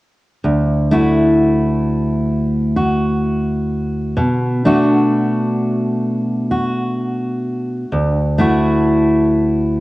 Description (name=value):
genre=folk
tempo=64 BPM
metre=4/4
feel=straight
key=D major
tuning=A4 = 442 Hz
part: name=fingerpicked steel-string acoustic guitar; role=accompaniment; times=0.4-9.8 s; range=D2 to F#4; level=-14 LUFS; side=equal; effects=cassette tape
room=wet spring reverb, RT60 2.1 s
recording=home recording on cassette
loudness=-14 LUFS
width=side -19 dB against mid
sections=0.4-9.8 A section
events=none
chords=0.4 Dadd9; 4.2 Bm7; 7.9 Dadd9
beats=| 0.42 1.36 2.30 3.23 | 4.17 5.10 6.03 6.97 | 7.90 8.83 9.77